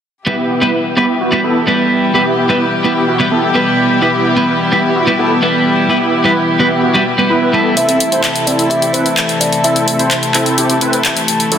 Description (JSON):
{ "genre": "EDM, festival progressive house", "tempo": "128 BPM", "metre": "4/4", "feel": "straight", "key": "E minor", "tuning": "A4 = 440 Hz", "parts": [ { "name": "twelve-string electric guitar", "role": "accompaniment", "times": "0.3-7.7 s", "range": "G3 to B4", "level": "-15 LUFS", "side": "right 1 dB", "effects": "dub echo" }, { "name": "dark studio string section", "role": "sustained chords", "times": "0.3-11.6 s", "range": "B2 to A4", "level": "-17 LUFS", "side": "left 2 dB", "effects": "none" }, { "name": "supersaw chords", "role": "riff", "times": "0.3-11.6 s", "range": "F#3 to C5", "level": "-16 LUFS", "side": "right 1 dB", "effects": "low-pass filter, dub echo" }, { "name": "buzzing kalimba", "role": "melody", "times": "7.8-11.6 s", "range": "A4 to E5", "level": "-18 LUFS", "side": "equal", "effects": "dub echo" }, { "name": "house drum kit", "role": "drums", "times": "7.8-11.6 s", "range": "handclaps, hi-hat", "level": "-16 LUFS", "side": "left 1 dB", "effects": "none" } ], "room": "wet lush hall reverb, RT60 2.4 s", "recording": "dense, heavily limited modern master", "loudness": "-11 LUFS", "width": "side -8 dB against mid", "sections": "0.3-11.6 A section", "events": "none", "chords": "0.3 Em; 7.8 Am", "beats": "| 0.27 0.74 1.21 1.68 | 2.15 2.61 3.08 3.55 | 4.02 4.49 4.96 5.43 | 5.89 6.36 6.83 7.30 | 7.77 8.24 8.71 9.18 | 9.64 10.11 10.58 11.05 | 11.52" }